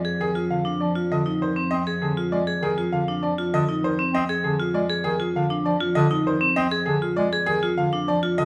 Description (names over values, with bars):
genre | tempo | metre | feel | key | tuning
classical, minimalist pattern music | 99 BPM | 4/4 | straight | F dorian | A4 = 443 Hz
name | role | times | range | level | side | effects
clear grand piano | melody | 0.0-8.4 s | Ab4 to F5 | -30 LUFS | equal | none
vibraphone with hard mallets | arpeggios | 0.0-8.4 s | C4 to Ab4 | -27 LUFS | equal | none
clear cello | bass | 0.0-8.4 s | F2 | -32 LUFS | equal | none
mellow bass clarinet | accompaniment | 0.2-8.4 s | D3 to C4 | -29 LUFS | equal | none
room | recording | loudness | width
wet large studio reverb, RT60 1.3 s | none | -23 LUFS | mono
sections
0.0-8.4 A section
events
none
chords
0.0 Fm7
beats
0.50 1.11 | 1.72 2.32 2.93 3.53 | 4.14 4.75 5.35 5.96 | 6.57 7.17 7.78 8.38